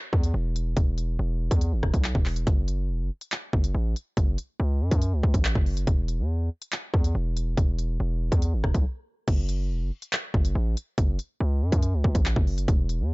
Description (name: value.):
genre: hip hop, drill.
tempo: 141 BPM.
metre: 4/4.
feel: half-time.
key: F# phrygian.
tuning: A4 = 442 Hz.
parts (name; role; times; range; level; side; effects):
distorted 808-style bass; bass; 0.1-13.1 s; E1 to F#2; -25 LUFS; equal; distortion.
drill drum kit; drums; 0.1-13.0 s; crash cymbal, handclaps, hi-hat, kick drum, rim click; -24 LUFS; equal; none.
room: little or no reverb.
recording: dark, warm production, nothing above 7.6 kHz.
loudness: -23 LUFS.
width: side -25 dB against mid.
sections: 0.0-9.3 A section; 9.3-13.1 B section.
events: break 8.9-9.3.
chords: none.